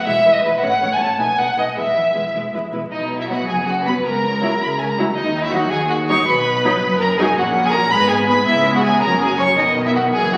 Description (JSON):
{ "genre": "quick classical-period movement for string orchestra", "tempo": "107 BPM (dotted quarters)", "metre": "6/8", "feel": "straight", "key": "B major", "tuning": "A4 = 440 Hz", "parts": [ { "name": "clear chamber violin section", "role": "second line", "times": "0.0-10.4 s", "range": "D#4 to A5", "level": "-21 LUFS", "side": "equal", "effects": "none" }, { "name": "rich chamber violin section", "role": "melody", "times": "0.1-10.4 s", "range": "B4 to C#6", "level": "-23 LUFS", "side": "equal", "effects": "none" }, { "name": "rich chamber viola section", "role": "accompaniment", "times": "0.1-10.4 s", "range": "D#3 to E4", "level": "-26 LUFS", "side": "equal", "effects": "none" }, { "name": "warm chamber cello section", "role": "bass", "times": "0.1-10.4 s", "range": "E2 to D#3", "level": "-30 LUFS", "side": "equal", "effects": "none" }, { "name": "warm chamber double bass section", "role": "bass", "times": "0.1-10.4 s", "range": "E1 to D#2", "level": "-30 LUFS", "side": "equal", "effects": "none" } ], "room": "wet scoring stage reverb, RT60 1.7 s", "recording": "very old 78 rpm record, vinyl crackle", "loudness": "-18 LUFS", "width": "mono", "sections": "0.0-2.9 A section; 2.9-10.4 B section", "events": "none", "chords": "0.1 E; 0.6 F#m; 1.2 B7; 1.8 E; 2.9 B5; 4.0 F#7/C#; 5.2 D#madd11; 6.3 B; 7.4 F#/A#; 7.9 G#m; 8.5 C#m7; 9.0 F#5; 9.6 B" }